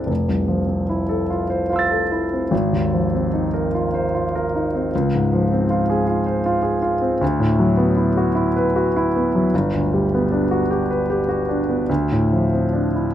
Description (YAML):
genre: classical, impressionist solo piano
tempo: 51 BPM (dotted quarters)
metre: 6/8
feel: uneven beats, rubato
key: unclear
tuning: A4 = 441 Hz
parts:
  - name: warm grand piano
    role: solo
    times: 0.0-13.1 s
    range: F1 to A6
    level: -17 LUFS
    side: equal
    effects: none
room: light reverb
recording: close, detailed microphones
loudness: -17 LUFS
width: side -11 dB against mid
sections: 0.0-13.1 A section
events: none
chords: 0.1 Fmaj7; 2.5 Ab69; 4.9 Dbmaj7; 7.2 D69; 9.5 Gmaj7; 11.9 Dm9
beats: | 0.10 1.30 | 2.52 3.74 | 4.92 6.08 | 7.21 8.36 | 9.53 10.68 | 11.89